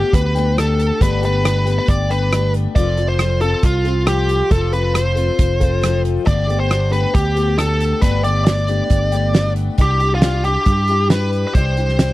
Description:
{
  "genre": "folk rock and heartland rock",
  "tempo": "137 BPM",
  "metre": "4/4",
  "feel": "straight",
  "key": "G mixolydian",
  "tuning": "A4 = 443 Hz",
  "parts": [
    { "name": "bluesy overdriven lead guitar", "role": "melody", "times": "0.0-12.1 s", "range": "F4 to D5", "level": "-20 LUFS", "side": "equal", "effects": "distortion, tape echo" },
    { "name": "picked twelve-string acoustic guitar", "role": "accompaniment", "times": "0.0-12.1 s", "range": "G2 to A4", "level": "-24 LUFS", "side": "left 7 dB", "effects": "none" },
    { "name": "fingered electric bass", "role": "bass", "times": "0.0-12.1 s", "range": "F1 to G2", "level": "-18 LUFS", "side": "equal", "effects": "none" },
    { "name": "loose indie drum kit", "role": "drums", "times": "0.1-12.1 s", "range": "hi-hat, kick drum, rim click, snare drum", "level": "-16 LUFS", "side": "right 1 dB", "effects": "none" }
  ],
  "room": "little or no reverb",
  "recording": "dry, close 1970s-style studio recording",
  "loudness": "-14 LUFS",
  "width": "side -16 dB against mid",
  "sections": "0.0-12.1 A section",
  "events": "none",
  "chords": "0.0 Gadd9; 2.8 F; 6.3 Gadd9; 9.8 Cadd9"
}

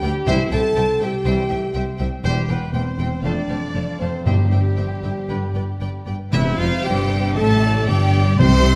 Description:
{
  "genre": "classical, dramatic, fast romantic movement for symphony orchestra",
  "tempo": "118 BPM",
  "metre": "4/4",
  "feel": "uneven beats",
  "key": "C major",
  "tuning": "A4 = 436 Hz",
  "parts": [
    { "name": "rich studio violin section", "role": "melody", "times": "0.0-8.8 s", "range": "E5 to C6", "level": "-33 LUFS", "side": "equal", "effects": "none" },
    { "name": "silver concert flute", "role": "second line", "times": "0.0-8.8 s", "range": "G4 to C6", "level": "-35 LUFS", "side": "equal", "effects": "none" },
    { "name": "warm symphonic violin section", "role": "second line", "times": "0.0-8.8 s", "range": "E4 to A5", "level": "-36 LUFS", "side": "equal", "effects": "none" },
    { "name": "warm symphonic viola section", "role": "accompaniment", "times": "0.0-8.8 s", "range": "A4 to G5", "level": "-36 LUFS", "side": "equal", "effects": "none" },
    { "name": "mellow French horn section", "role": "sustained chords", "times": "0.0-8.8 s", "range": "E3 to A4", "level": "-28 LUFS", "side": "equal", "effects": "none" },
    { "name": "concert harp", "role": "arpeggios", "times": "0.0-8.8 s", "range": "E2 to C6", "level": "-30 LUFS", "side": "equal", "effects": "none" },
    { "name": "clear symphonic cello section", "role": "bass", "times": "0.0-8.8 s", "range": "C2 to C3", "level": "-26 LUFS", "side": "equal", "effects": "none" },
    { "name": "clear symphonic double bass section", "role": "bass", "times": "0.0-8.8 s", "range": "E1 to D2", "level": "-25 LUFS", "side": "equal", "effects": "none" },
    { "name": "warm trombone section", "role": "sustained chords", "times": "0.3-8.8 s", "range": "D3 to C4", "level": "-32 LUFS", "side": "equal", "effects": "none" },
    { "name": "clear trumpet", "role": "stabs", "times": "0.3-8.8 s", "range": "E4 to C5", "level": "-31 LUFS", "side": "equal", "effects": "none" },
    { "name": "timpani", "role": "percussion", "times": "0.3-1.0, 4.3-8.8 s", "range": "G2 to C3", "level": "-24 LUFS", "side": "equal", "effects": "none" },
    { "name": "mellow clarinet", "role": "second line", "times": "6.3-8.8 s", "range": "E4 to C5", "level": "-32 LUFS", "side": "equal", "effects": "none" }
  ],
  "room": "wet scoring stage reverb, RT60 1.8 s",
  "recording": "none",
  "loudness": "-20 LUFS",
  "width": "mono",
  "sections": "0.0-6.3 A section; 6.3-8.8 B section",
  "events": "none",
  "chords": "0.3 C; 2.2 C/E; 3.2 F; 4.3 C/G; 5.3 G; 6.3 C/E"
}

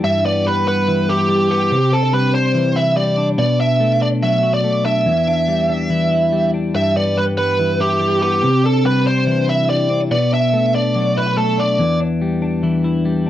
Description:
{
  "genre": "indie pop",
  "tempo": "143 BPM",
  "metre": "4/4",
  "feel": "straight",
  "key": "B phrygian",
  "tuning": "A4 = 440 Hz",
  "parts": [
    { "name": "bluesy overdriven lead guitar", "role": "melody", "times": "0.0-12.0 s", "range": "G4 to E5", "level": "-17 LUFS", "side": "right 2 dB", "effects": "distortion, slapback echo" },
    { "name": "twelve-string electric guitar", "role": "arpeggios", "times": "0.0-13.3 s", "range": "E2 to F#4", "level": "-17 LUFS", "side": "left 2 dB", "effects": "slapback echo" }
  ],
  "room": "light reverb",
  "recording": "dry, close 1970s-style studio recording",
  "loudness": "-14 LUFS",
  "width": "side -12 dB against mid",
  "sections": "0.0-13.3 A section",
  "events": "none",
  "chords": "0.0 G6; 1.7 Cadd9; 3.4 Bm7; 5.1 Em7; 6.8 G6; 8.4 Cadd9; 10.1 Bm7; 11.8 Em7"
}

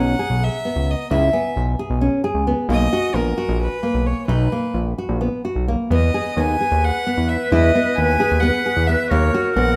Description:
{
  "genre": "contemporary instrumental, chamber music in an uneven meter",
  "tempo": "262 BPM (eighths)",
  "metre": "7/8",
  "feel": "straight",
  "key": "unclear",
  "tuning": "A4 = 439 Hz",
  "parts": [
    { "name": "clear violin", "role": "melody", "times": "0.0-9.8 s", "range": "A#4 to G#5", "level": "-26 LUFS", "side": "equal", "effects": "none" },
    { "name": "nylon-string guitar", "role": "arpeggios", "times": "0.0-9.8 s", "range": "A#3 to G#4", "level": "-24 LUFS", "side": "equal", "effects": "none" },
    { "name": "fat analog bass", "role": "bass", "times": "0.0-9.8 s", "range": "A#1 to E2", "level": "-23 LUFS", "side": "equal", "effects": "none" },
    { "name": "glockenspiel with soft plastic mallets", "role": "texture", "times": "0.0-5.6, 8.9-9.8 s", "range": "G#5 to A#6", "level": "-35 LUFS", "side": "equal", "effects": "none" },
    { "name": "mellow clarinet", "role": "second line", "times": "5.9-9.8 s", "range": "A#4 to B4", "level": "-25 LUFS", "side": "equal", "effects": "none" }
  ],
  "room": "moderate recital hall reverb, RT60 1.3 s",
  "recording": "none",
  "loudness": "-19 LUFS",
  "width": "mono",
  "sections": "0.0-9.8 A section",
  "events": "none",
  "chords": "0.0 C#m7; 2.7 Bmaj7(no3); 5.9 Emaj7; 9.1 Bmaj7"
}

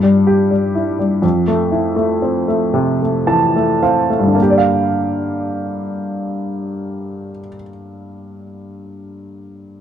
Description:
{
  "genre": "folk",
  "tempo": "35-43 BPM (dotted quarters)",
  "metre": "6/8",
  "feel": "straight",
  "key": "G dorian",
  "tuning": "A4 = 440 Hz",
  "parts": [
    { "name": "warm upright piano", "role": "accompaniment", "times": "0.0-9.8 s", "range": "F2 to A5", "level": "-15 LUFS", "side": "equal", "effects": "none" }
  ],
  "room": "moderate studio reverb, RT60 0.9 s",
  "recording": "none",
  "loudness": "-14 LUFS",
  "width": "side -9 dB against mid",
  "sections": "0.0-4.4 A section; 4.4-7.8 B section",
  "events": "slowing down 0.0-4.4",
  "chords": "0.0 Em/G; 1.2 Fmaj7; 4.4 Gm7"
}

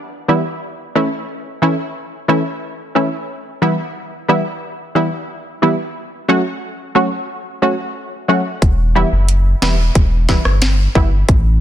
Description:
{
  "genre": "dancehall",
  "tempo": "90 BPM",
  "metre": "4/4",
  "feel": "straight",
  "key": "E dorian",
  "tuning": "A4 = 438 Hz",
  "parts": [
    { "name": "punchy chord stab", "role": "accompaniment", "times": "0.3-11.1 s", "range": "E3 to F#4", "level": "-17 LUFS", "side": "equal", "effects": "chorus" },
    { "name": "warm sub bass", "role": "bass", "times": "8.6-11.6 s", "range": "E1 to A1", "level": "-14 LUFS", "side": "equal", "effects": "none" },
    { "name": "island pop drum kit", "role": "drums", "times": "8.6-11.4 s", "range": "hi-hat, kick drum, rim click, snare drum", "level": "-15 LUFS", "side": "equal", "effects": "vintage 12-bit sampler grit" }
  ],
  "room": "light reverb",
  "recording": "dense, heavily limited modern master",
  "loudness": "-14 LUFS",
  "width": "side -11 dB against mid",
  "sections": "0.0-11.6 A section",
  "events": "none",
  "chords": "0.0 Em; 0.6 A; 3.3 Em; 6.0 F#m; 8.6 Em"
}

